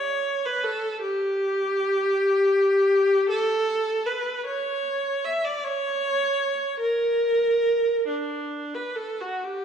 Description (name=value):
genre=classical, free, expressive piece for unaccompanied viola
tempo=40-55 BPM (dotted quarters)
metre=6/8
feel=rubato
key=unclear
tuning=A4 = 441 Hz
part: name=rich viola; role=solo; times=0.0-9.6 s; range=D4 to E5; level=-22 LUFS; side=equal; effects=none
room=wet concert hall reverb, RT60 2.1 s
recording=minimal, uncompressed stereo recording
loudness=-22 LUFS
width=side -8 dB against mid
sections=0.0-9.6 A section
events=none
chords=none